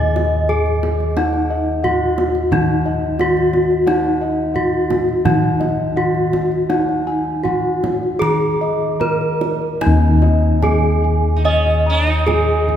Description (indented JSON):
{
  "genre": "Javanese gamelan",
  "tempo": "73-89 BPM",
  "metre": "4/4",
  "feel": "straight",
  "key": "unclear",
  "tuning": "A4 = 444 Hz",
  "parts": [
    { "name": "gamelan-type bronze metallophone", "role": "melody", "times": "0.0-12.8 s", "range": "Eb4 to Eb5", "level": "-19 LUFS", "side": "equal", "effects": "none" },
    { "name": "gamelan-type bossed gongs", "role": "arpeggios", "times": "0.0-12.7 s", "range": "Eb5 to Bb5", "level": "-23 LUFS", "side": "left 2 dB", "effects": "none" },
    { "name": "gamelan-type bossed gongs", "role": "bass", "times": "0.0-12.8 s", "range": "Eb2 to Gb4-45c", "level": "-18 LUFS", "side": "left 1 dB", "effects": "none" },
    { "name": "kendang", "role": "percussion", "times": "0.2-12.8 s", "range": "none", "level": "-25 LUFS", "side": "right 3 dB", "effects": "none" },
    { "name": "gamelan-type bronze metallophone", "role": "arpeggios", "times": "9.8-12.8 s", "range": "Eb5 to Eb6", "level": "-27 LUFS", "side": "right 5 dB", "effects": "none" },
    { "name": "sitar", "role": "second line", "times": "11.4-12.8 s", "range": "Db4-25c to Eb4", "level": "-21 LUFS", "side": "right 4 dB", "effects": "none" }
  ],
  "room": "wet church reverb, RT60 3.4 s",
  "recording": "recorded in a church or concert hall",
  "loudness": "-14 LUFS",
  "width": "side -9 dB against mid",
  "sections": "0.0-9.8 A section; 9.8-12.8 B section",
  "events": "none",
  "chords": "none"
}